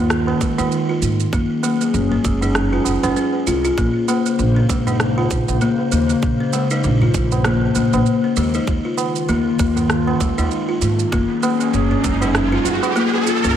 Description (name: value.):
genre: organic downtempo.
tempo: 98 BPM.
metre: 4/4.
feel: swing 58% on 16ths.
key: unclear.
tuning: A4 = 441 Hz.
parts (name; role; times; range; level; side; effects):
warbly tape-like pad; sustained chords; 0.0-13.5 s; Db3 to C5; -22 LUFS; equal; chorus, built-in reverb, sidechain pumping.
buzzing kalimba; arpeggios; 0.0-13.6 s; Ab3 to Ab4; -20 LUFS; left 3 dB; tape echo.
upright bass; bass; 0.0-13.5 s; Gb1 to Ab2; -21 LUFS; right 1 dB; sidechain pumping.
electronic rim click and shaker; drums; 0.1-13.5 s; none; -26 LUFS; right 3 dB; none.
tabla; percussion; 0.3-13.5 s; none; -27 LUFS; right 6 dB; none.
electronic kick drum; drums; 0.4-12.2 s; none; -22 LUFS; right 1 dB; none.
riser; sound effects; 10.7-13.6 s; none; -24 LUFS; right 2 dB; none.
room: moderate plate reverb, RT60 2.1 s.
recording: dreamy mix soaked in reverb.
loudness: -16 LUFS.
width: side -10 dB against mid.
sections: 0.0-13.6 A section.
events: riser 10.7-13.6; kick drops out 12.3-13.6.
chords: 0.0 Eb5; 1.3 Gbsus2; 3.8 Bbmadd9; 8.7 Eb5; 11.1 Gbsus2.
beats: 0.10 0.71 | 1.33 1.94 2.55 3.16 | 3.78 4.39 5.00 5.61 | 6.22 6.84 7.45 8.06 | 8.67 9.29 9.90 10.51 | 11.12 11.73 12.35 12.96.